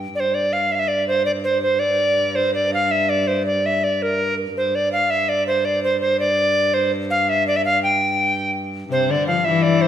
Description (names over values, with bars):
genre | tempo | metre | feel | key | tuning
medieval dance | 110 BPM (dotted quarters) | 6/8 | straight | unclear | A4 = 440 Hz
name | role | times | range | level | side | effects
warm viola da gamba | drone | 0.0-9.9 s | G2 | -28 LUFS | right 1 dB | none
bright reedy alto recorder | melody | 0.2-9.9 s | Bb4 to G5 | -18 LUFS | equal | none
warm viola da gamba | second line | 8.9-9.9 s | C3 to F3 | -18 LUFS | left 7 dB | none
room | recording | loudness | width
wet recital hall reverb, RT60 1.3 s | minimal, uncompressed stereo recording | -17 LUFS | side -10 dB against mid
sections
0.2-8.9 A section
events
none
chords
none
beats
| 0.16 0.71 | 1.25 1.80 | 2.35 2.90 | 3.45 3.99 | 4.54 5.09 | 5.63 6.18 | 6.73 7.27 | 7.82 8.36 | 8.91 9.45